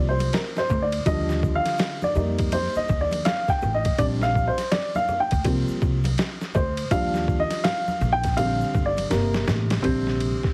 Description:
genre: hip hop, jazz-hop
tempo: 82 BPM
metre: 4/4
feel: swing 63% on 16ths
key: Bb major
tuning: A4 = 439 Hz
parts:
  - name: dark upright piano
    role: accompaniment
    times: 0.0-10.5 s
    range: C3 to G5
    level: -26 LUFS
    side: equal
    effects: none
  - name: upright bass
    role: bass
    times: 0.0-10.3 s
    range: G1 to F2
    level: -28 LUFS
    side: equal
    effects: none
  - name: boom bap sampler-style drum kit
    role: drums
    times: 0.2-10.5 s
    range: hi-hat, kick drum, ride cymbal, snare drum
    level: -29 LUFS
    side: equal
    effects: none
  - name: congas and egg shaker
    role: percussion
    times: 0.2-9.8 s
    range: none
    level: -37 LUFS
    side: equal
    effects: none
room: light reverb, studio ambience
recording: heavily compressed radio sound, vinyl crackle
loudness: -23 LUFS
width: mono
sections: 0.0-9.8 A section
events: upright piano solo 0.0-9.8; drum fill 9.1-9.8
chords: 0.0 C9sus4; 1.1 Ebmaj9; 2.2 F7sus4; 4.0 Bb69; 5.5 C9sus4; 6.9 Ebmaj9; 8.0 Bb69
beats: 0.33 | 1.06 1.79 2.52 3.25 | 3.99 4.72 5.45 6.18 | 6.91 7.64 8.38 9.11 | 9.84

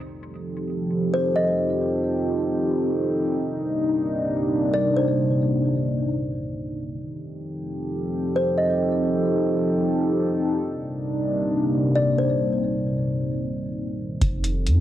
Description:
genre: hip hop, atmospheric cloud-rap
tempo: free time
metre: none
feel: none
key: C dorian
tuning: A4 = 441 Hz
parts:
  - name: dark analog pad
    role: sustained chords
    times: 0.0-14.8 s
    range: C3 to A4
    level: -22 LUFS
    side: equal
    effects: chorus, phaser, sidechain pumping
  - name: kalimba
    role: melody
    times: 1.1-1.6, 4.7-5.2, 8.4-8.8, 12.0-12.4 s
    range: C5 to Eb5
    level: -26 LUFS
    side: equal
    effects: cassette tape, tape echo
  - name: soft 808-style bass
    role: bass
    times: 14.2-14.8 s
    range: F1 to F2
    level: -20 LUFS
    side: equal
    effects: none
  - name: booming analog drum machine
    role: drums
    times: 14.2-14.8 s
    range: hi-hat, kick drum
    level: -24 LUFS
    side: equal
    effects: cassette tape
room: light reverb, digital ambience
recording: home recording on cassette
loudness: -21 LUFS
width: side -12 dB against mid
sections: 0.0-14.8 A section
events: none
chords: 0.0 F7; 3.4 Cm7; 7.0 F7; 10.6 Cm7; 14.2 F7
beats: free time

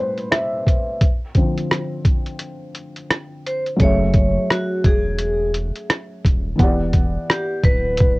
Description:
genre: lo-fi hip hop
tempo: 86 BPM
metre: 4/4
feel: swing 60% on 16ths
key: unclear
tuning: A4 = 440 Hz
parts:
  - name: felt-muted upright piano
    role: accompaniment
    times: 0.0-8.2 s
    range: A2 to F#5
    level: -24 LUFS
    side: equal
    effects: cassette tape, low-pass filter
  - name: lo-fi sampler-style drum kit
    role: drums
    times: 0.2-8.2 s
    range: hi-hat, kick drum, rim click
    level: -17 LUFS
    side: equal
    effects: cassette tape
  - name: vibraphone with hard mallets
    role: melody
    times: 3.5-8.2 s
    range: F#4 to C#5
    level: -22 LUFS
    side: equal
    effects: low-pass filter, cassette tape
  - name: soft dub sub bass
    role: bass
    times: 3.8-8.2 s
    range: D1 to F#1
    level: -23 LUFS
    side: equal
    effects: none
room: light reverb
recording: home recording on cassette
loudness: -17 LUFS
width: side -23 dB against mid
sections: 0.0-3.8 A section; 3.8-8.2 B section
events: felt piano solo 0.0-3.8; filter sweep on felt piano 0.0-3.8; break 2.4-3.8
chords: 0.0 Am7; 1.0 Dm7; 3.8 F#m9; 6.6 Em9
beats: 0.31 | 1.01 1.71 2.40 3.10 | 3.80 4.50 5.20 5.89 | 6.59 7.29 7.99

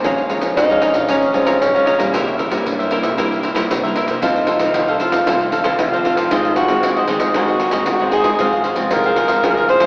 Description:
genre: samba and choro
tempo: 115 BPM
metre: 4/4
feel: straight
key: unclear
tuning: A4 = 439 Hz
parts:
  - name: breathy tenor saxophone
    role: second line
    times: 0.0-9.9 s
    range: C4 to C5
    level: -18 LUFS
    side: equal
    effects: none
  - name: cavaquinho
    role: accompaniment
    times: 0.0-9.9 s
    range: Eb4 to Bb5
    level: -20 LUFS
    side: equal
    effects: none
  - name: nylon-string guitar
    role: accompaniment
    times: 0.0-9.9 s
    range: F2 to E4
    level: -22 LUFS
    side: equal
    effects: none
  - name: upright bass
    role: bass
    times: 0.0-9.9 s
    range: Bb1 to Eb3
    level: -31 LUFS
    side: equal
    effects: none
  - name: pandeiro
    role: percussion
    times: 0.0-9.9 s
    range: none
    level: -21 LUFS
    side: equal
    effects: none
room: wet cathedral reverb, RT60 6.5 s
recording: recorded in a church or concert hall, AM radio sound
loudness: -14 LUFS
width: side -39 dB against mid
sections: 0.0-9.9 A section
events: tenor saxophone solo 0.0-9.9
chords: 0.1 Bbm7; 2.1 C7; 4.2 F; 6.3 Ab; 8.4 Fm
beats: | 0.05 0.57 1.09 1.62 | 2.14 2.66 3.18 3.70 | 4.23 4.75 5.27 5.79 | 6.31 6.83 7.36 7.88 | 8.40 8.92 9.44

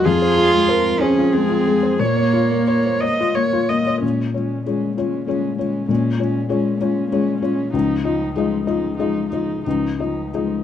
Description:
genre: neoclassical piano and strings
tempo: 87-99 BPM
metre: 3/4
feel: rubato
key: Bb minor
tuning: A4 = 440 Hz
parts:
  - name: warm cello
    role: second line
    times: 0.0-10.6 s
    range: F3 to F4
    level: -23 LUFS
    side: right 4 dB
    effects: none
  - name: dark viola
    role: accompaniment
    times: 0.0-10.6 s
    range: Db4 to Eb5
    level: -22 LUFS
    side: right 2 dB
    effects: none
  - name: felt-muted upright piano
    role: accompaniment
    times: 0.0-10.6 s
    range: Db2 to Eb5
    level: -20 LUFS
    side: left 6 dB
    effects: none
room: studio reverb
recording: dry, close 1970s-style studio recording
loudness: -17 LUFS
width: side -10 dB against mid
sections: 0.0-4.0 A section; 4.0-10.6 B section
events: none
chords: 0.0 Fm; 2.0 Bbm; 4.0 Bbm7; 7.7 Dbadd9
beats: | 0.05 0.69 1.33 | 2.00 2.68 3.36 | 4.02 4.66 5.28 | 5.89 6.50 7.12 | 7.73 8.35 8.99 | 9.65 10.34

